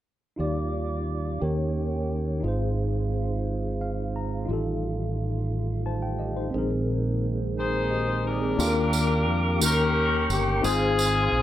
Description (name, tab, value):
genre	slow gospel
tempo	59 BPM (dotted quarters)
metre	6/8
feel	straight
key	Eb major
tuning	A4 = 436 Hz
part	tine electric piano	accompaniment	0.4-11.4 s	Ab2 to Bb5	-30 LUFS	left 2 dB	medium stereo tremolo
part	tonewheel organ	sustained chords	0.4-11.4 s	Eb3 to D6	-31 LUFS	right 4 dB	slow rotary speaker, overdrive
part	fingered electric bass	bass	0.4-11.4 s	G1 to F2	-28 LUFS	equal	none
part	clear saxophone section	melody	7.6-11.4 s	C4 to C5	-26 LUFS	left 3 dB	none
part	tambourine	percussion	8.6-11.3 s	none	-31 LUFS	right 6 dB	none
room	light reverb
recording	none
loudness	-24 LUFS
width	side -12 dB against mid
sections	0.4-8.6 A section; 8.6-11.4 B section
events	tine electric piano fill 3.5-4.5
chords	0.4 Ebmaj9; 1.4 Eb7; 2.4 Ab6; 4.5 F9/A; 6.5 Bb9sus4; 8.6 Ebmaj9; 9.6 Eb7; 10.6 Ab6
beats	| 0.40 1.42 | 2.44 3.47 | 4.50 5.52 | 6.54 7.57 | 8.59 9.62 | 10.64